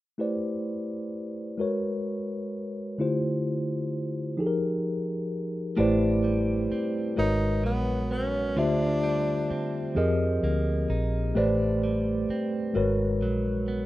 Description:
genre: slow six-eight R&B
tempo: 43 BPM (dotted quarters)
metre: 6/8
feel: straight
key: unclear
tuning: A4 = 440 Hz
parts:
  - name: mellow tine electric piano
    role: accompaniment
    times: 0.2-13.9 s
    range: D3 to E5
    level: -26 LUFS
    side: equal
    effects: medium stereo tremolo
  - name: clean electric guitar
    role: second line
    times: 5.8-13.9 s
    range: G#2 to F4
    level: -36 LUFS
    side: right 4 dB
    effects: spring reverb
  - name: vintage muted fingered electric bass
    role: bass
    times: 5.8-13.9 s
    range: G#1 to F2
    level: -29 LUFS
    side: equal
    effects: none
  - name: breathy tenor saxophone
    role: melody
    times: 7.2-10.0 s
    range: B3 to D#4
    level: -30 LUFS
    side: equal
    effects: none
room: light reverb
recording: rough home demo mix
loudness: -25 LUFS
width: side -16 dB against mid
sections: 0.2-5.8 A section; 5.8-13.9 B section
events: none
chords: 0.2 Am11; 1.6 G#m11; 3.0 Dm11; 4.4 Fm11; 5.8 Am11; 7.2 G#m11; 8.6 Dm11; 10.0 Fm11; 11.3 Am11; 12.7 G#m11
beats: | 0.19 1.58 | 2.98 4.37 | 5.77 7.16 | 8.56 9.95 | 11.35 12.74

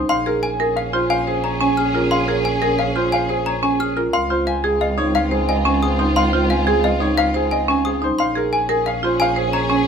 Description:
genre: classical, minimalist pattern music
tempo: 178 BPM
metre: 6/4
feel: straight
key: Bb minor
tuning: A4 = 440 Hz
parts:
  - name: bright grand piano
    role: melody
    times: 0.0-9.9 s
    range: Ab4 to Ab5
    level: -22 LUFS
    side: left 5 dB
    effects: none
  - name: marimba with hard mallets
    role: arpeggios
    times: 0.0-9.9 s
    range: Db4 to C5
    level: -21 LUFS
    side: right 4 dB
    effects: none
  - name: warm studio violin section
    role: sustained chords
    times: 0.1-9.9 s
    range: C4 to Ab4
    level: -25 LUFS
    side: equal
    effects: none
  - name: trough xylophone with plastic mallets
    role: arpeggios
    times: 0.1-9.8 s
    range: Eb5 to F6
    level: -25 LUFS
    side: left 2 dB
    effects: none
  - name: rich double bass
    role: bass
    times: 0.1-9.9 s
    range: Bb1 to Db2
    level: -24 LUFS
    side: right 2 dB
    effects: none
room: moderate studio reverb, RT60 0.8 s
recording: minimal, uncompressed stereo recording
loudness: -16 LUFS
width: side -6 dB against mid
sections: 0.0-9.9 A section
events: none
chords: 0.1 Bbm7; 4.1 Dbmaj7; 8.2 Bbm7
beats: | 0.09 0.43 0.77 1.10 1.44 1.78 | 2.12 2.45 2.79 3.13 3.46 3.80 | 4.14 4.47 4.81 5.15 5.49 5.82 | 6.16 6.50 6.83 7.17 7.51 7.84 | 8.18 8.52 8.86 9.19 9.53 9.87

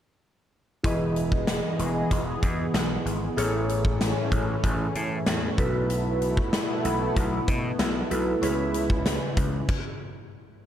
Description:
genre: 1980s-style pop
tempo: 95 BPM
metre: 4/4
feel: straight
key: E major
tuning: A4 = 440 Hz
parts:
  - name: glassy digital keys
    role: accompaniment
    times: 0.8-9.7 s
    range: A2 to D#5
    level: -28 LUFS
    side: equal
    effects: chorus
  - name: lush unison pad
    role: sustained chords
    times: 1.3-9.7 s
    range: C#3 to D#5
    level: -31 LUFS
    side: equal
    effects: chorus, phaser
  - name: gritty slap bass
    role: bass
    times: 0.8-9.6 s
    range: E1 to B2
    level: -30 LUFS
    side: equal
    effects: overdrive
  - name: big rock drum kit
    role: drums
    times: 0.8-9.8 s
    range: crash cymbal, hi-hat, kick drum, snare drum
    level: -28 LUFS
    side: equal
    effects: none
room: moderate lush hall reverb, RT60 1.8 s, studio ambience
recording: dark, warm production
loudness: -23 LUFS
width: side -10 dB against mid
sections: 0.8-10.7 A section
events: stop 9.7-10.7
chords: 0.8 Emaj7; 3.4 Amaj7; 5.6 B7sus4; 8.4 C#m7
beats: | 0.85 1.48 2.11 2.74 | 3.37 4.00 4.63 5.27 | 5.90 6.53 7.16 7.79 | 8.42 9.06 9.69

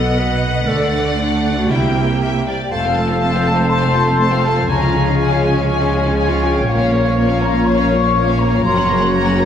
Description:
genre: cinematic, heroic adventure film score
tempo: 121 BPM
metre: 4/4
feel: straight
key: unclear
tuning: A4 = 440 Hz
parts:
  - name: rich symphonic violin section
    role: melody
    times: 0.0-9.5 s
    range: Db5 to Bb5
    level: -24 LUFS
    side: left 4 dB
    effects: none
  - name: clear clarinet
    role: second line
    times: 0.0-9.5 s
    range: D4 to B4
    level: -26 LUFS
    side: left 1 dB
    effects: none
  - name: rich symphonic violin section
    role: second line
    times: 0.0-9.5 s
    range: F4 to E5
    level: -27 LUFS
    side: left 1 dB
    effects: none
  - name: rich symphonic viola section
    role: accompaniment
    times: 0.0-9.5 s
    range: A3 to F4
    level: -25 LUFS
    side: right 2 dB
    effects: none
  - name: clear symphonic double bass section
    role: bass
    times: 0.0-9.5 s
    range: F1 to D2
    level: -21 LUFS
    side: right 2 dB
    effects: none
  - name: rich symphonic cello section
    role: bass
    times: 0.0-9.5 s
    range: F2 to D3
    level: -21 LUFS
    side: right 1 dB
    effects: none
  - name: flute section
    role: second line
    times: 2.5-9.5 s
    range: F5 to Db6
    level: -21 LUFS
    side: left 3 dB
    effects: none
  - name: clear oboe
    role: second line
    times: 2.7-9.5 s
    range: C5 to Db5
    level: -26 LUFS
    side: right 1 dB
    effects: none
  - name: dark French horn section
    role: sustained chords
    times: 2.7-9.5 s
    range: C4 to Gb4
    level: -24 LUFS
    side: left 3 dB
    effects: none
  - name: dark trombone section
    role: sustained chords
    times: 2.7-9.5 s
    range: Db3 to Bb3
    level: -24 LUFS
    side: equal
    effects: none
  - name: concert harp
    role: arpeggios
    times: 2.7-9.5 s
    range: F2 to F5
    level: -23 LUFS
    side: left 4 dB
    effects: none
  - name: warm trumpet section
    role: stabs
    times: 2.7-9.5 s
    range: A4 to Db5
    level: -25 LUFS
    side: left 1 dB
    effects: none
room: wet recital hall reverb, RT60 1.5 s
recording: heard from further back in the room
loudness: -13 LUFS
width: side -9 dB against mid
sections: 0.0-2.7 A section; 2.7-9.5 B section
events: none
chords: 0.0 B; 0.7 D; 1.7 C7; 2.7 F; 4.7 Db; 6.7 Bbm; 8.6 Gb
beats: 0.19 | 0.68 1.18 1.70 2.21 | 2.71 3.21 3.71 4.20 | 4.70 5.19 5.68 6.17 | 6.67 7.16 7.66 8.15 | 8.64 9.13

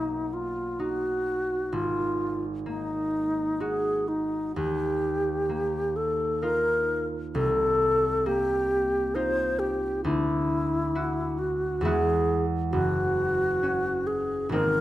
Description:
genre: classical, impressionist duo for alto flute and harp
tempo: 66 BPM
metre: 3/4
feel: rubato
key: unclear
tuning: A4 = 440 Hz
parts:
  - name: bright wooden-headed alto flute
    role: melody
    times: 0.0-14.8 s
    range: D#4 to C5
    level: -26 LUFS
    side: equal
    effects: none
  - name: concert harp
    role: accompaniment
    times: 0.0-14.8 s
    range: Gb1 to F#4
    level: -30 LUFS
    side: right 1 dB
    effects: none
room: moderate recital hall reverb, RT60 1.2 s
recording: none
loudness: -24 LUFS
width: side -14 dB against mid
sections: 0.0-14.8 A section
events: none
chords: 0.0 Bmaj7; 1.7 G#7sus2; 4.6 D#add9; 7.3 Cm7; 10.0 Dadd9; 11.8 E; 12.7 Gbsus2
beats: 0.80 | 1.74 2.67 3.61 | 4.57 5.50 6.43 | 7.34 8.26 9.15 | 10.05 10.95 11.84 | 12.73 13.63 14.53

